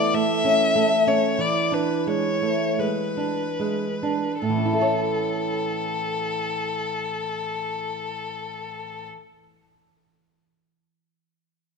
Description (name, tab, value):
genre	romantic duo for violin and classical guitar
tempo	34-50 BPM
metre	4/4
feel	rubato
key	A major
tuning	A4 = 440 Hz
part	rich violin	melody	0.0-9.1 s	A4 to E5	-25 LUFS	left 4 dB	none
part	nylon-string guitar	accompaniment	0.0-9.5 s	A2 to C#5	-24 LUFS	right 2 dB	none
room	moderate recital hall reverb, RT60 1.7 s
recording	minimal, uncompressed stereo recording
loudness	-21 LUFS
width	side -5 dB against mid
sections	0.0-4.4 A section; 4.4-10.2 B section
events	slowing down 0.0-4.4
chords	0.0 A/E; 1.4 E7; 4.4 A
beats	0.14 1.39 2.79 | 4.41 5.88 7.32 8.75